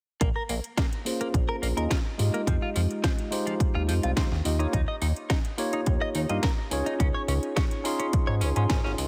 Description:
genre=nu-disco, nu disco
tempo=106 BPM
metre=4/4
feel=straight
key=Bb dorian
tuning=A4 = 439 Hz
part: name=direct-recorded clean electric guitar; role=riff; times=0.2-8.9 s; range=F3 to Eb5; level=-37 LUFS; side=equal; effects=analog chorus, digital delay
part: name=chorused synth bass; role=bass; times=0.2-9.1 s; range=Ab1 to Ab2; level=-29 LUFS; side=equal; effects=tube saturation
part: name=electronic kick drum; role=drums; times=0.2-8.8 s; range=none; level=-28 LUFS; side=equal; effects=none
part: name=house drum kit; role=drums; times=0.2-9.1 s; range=hi-hat, snare drum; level=-36 LUFS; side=equal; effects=none
part: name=tine electric piano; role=accompaniment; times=1.0-9.1 s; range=Ab3 to C6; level=-33 LUFS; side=equal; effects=sidechain pumping, low-pass filter, digital delay
room=light reverb, digital ambience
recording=heavily compressed radio sound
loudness=-27 LUFS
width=mono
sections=0.2-9.1 A section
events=filter sweep on tine electric piano 0.2-9.1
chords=0.2 Bbm9; 2.5 Fm7; 4.5 Eb9; 7.0 Dbmaj7

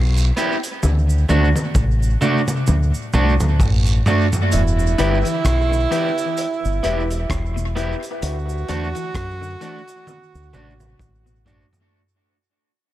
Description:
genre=dub reggae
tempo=65 BPM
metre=4/4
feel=swing 58% on 16ths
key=unclear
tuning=A4 = 440 Hz
part: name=fingered electric bass with an envelope filter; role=bass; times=0.0-11.6 s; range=E1 to F#2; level=-18 LUFS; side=equal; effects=none
part: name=cabasa and guiro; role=percussion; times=0.2-11.9 s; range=none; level=-34 LUFS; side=right 6 dB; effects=tape echo
part: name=electric guitar at the edge of break-up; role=accompaniment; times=0.4-11.7 s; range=A3 to G4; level=-24 LUFS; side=right 2 dB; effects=tape echo
part: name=crunchy breakbeat drum kit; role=drums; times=0.4-11.9 s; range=hi-hat, kick drum, rim click, toms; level=-22 LUFS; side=equal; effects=none
part: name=clear tenor saxophone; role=second line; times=4.5-11.4 s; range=E4 to F#4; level=-25 LUFS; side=right 5 dB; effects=tape echo
part: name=electric guitar at the edge of break-up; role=arpeggios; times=5.0-11.7 s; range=A2 to E3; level=-31 LUFS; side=left 7 dB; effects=wide subtle chorus, tape echo
part: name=warm grand piano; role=stabs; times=5.0-8.0 s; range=E4 to E5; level=-28 LUFS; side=left 4 dB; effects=tape echo
room=light reverb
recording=echo-heavy mix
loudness=-16 LUFS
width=side -14 dB against mid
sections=0.0-4.5 A section; 4.5-11.9 B section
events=break 0.0-4.5, 8.2-11.9; drum fill 0.8-4.5, 10.1-11.9; fade-out 4.5-11.9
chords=0.0 Em; 0.8 D; 4.5 Em; 8.2 D

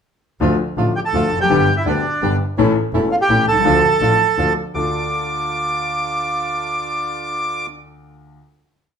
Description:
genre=tango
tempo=166 BPM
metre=3/4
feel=rubato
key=D harmonic minor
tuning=A4 = 444 Hz
part: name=clear grand piano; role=accompaniment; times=0.4-8.4 s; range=E1 to A4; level=-20 LUFS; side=left 4 dB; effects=none
part: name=bandoneon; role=stabs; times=0.4-7.7 s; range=A3 to A4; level=-26 LUFS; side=right 4 dB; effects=none
part: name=clear double bass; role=bass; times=0.4-4.9 s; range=E1 to D2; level=-22 LUFS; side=right 2 dB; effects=none
part: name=bandoneon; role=melody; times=1.0-7.7 s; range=D4 to D6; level=-18 LUFS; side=right 2 dB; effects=slapback echo
room=wet large studio reverb, RT60 0.9 s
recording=band playing live in one room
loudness=-16 LUFS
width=side -7 dB against mid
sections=0.4-4.7 A section; 4.7-6.9 final chord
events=none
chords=0.4 Dm; 1.5 G; 2.6 A; 3.7 Dm

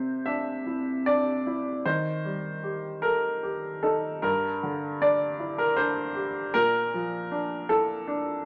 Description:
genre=neoclassical minimalist piano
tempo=73-81 BPM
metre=3/4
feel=rubato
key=unclear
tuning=A4 = 440 Hz
part: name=clear upright piano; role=solo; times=0.0-8.5 s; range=G2 to E5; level=-28 LUFS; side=equal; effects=none
room=moderate studio reverb, RT60 0.6 s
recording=none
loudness=-27 LUFS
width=mono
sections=0.0-8.5 A section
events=none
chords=0.0 Cadd9; 1.9 Eb; 4.2 Gm; 6.6 Bb

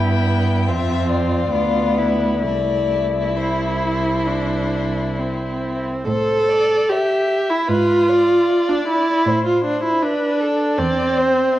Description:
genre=classical, slow romantic movement for string quartet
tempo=64-81 BPM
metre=4/4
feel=rubato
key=A minor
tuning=A4 = 440 Hz
part: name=clear violin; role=melody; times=0.0-11.6 s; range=C5 to G5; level=-24 LUFS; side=left 8 dB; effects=none
part: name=rich violin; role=second line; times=0.0-11.6 s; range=E4 to E5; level=-24 LUFS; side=left 2 dB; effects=none
part: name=clear viola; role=accompaniment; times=0.0-11.6 s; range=A3 to A4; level=-18 LUFS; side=right 1 dB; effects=none
part: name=rich cello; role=bass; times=0.0-11.4 s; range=C2 to A2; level=-22 LUFS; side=right 2 dB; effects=none
room=wet recital hall reverb, RT60 1.5 s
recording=worn, warbling old tape, cassette tape, warbly pitch drift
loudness=-16 LUFS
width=side -14 dB against mid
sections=0.0-6.1 A section; 6.1-11.6 A section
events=none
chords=0.0 Em/G; 0.7 Dm/F; 1.5 E5/D; 2.4 Am/C; 6.1 Am; 7.7 E/G#; 9.3 Am

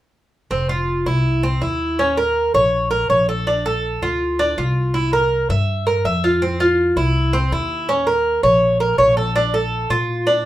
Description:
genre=latin, Cuban son and guajira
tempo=163 BPM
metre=4/4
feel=straight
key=F major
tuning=A4 = 440 Hz
part: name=Cuban tres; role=arpeggios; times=0.5-10.4 s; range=C4 to E5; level=-17 LUFS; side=right 1 dB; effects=none
part: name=upright bass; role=bass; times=0.5-10.4 s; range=F1 to Bb2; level=-22 LUFS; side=left 1 dB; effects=none
room=wet studio reverb, RT60 0.5 s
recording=band playing live in one room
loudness=-16 LUFS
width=side -14 dB against mid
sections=0.5-10.5 A section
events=none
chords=0.5 F5; 2.0 Eb5; 3.5 Bbmaj7; 4.9 C7; 6.4 F5; 7.9 Eb5; 9.4 Bbmaj7

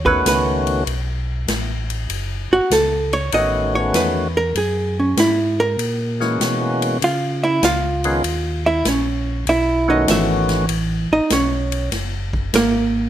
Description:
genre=soul jazz organ trio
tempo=98 BPM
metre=4/4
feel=swing 67% on 8ths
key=unclear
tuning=A4 = 441 Hz
part: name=mellow tonewheel organ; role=bass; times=0.0-13.1 s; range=F#1 to C#3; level=-24 LUFS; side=equal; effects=overdrive, chorus vibrato, slow rotary speaker
part: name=percussive tonewheel organ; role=melody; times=0.1-10.7 s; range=D#3 to F#4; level=-20 LUFS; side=left 1 dB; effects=overdrive, slow rotary speaker
part: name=hollow-body jazz guitar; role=accompaniment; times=0.1-13.1 s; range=E3 to E#5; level=-18 LUFS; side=right 2 dB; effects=none
part: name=swinging big-band drum kit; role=drums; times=0.1-12.7 s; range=hi-hat, kick drum, ride cymbal, snare drum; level=-25 LUFS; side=left 2 dB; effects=none
room=light reverb, studio reverb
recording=rough home demo mix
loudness=-16 LUFS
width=side -11 dB against mid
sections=0.0-13.1 A section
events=hollow-body jazz guitar solo 0.0-13.1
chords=0.0 B9; 4.6 F#9; 7.0 C#add9; 9.5 B9; 11.9 F#add9

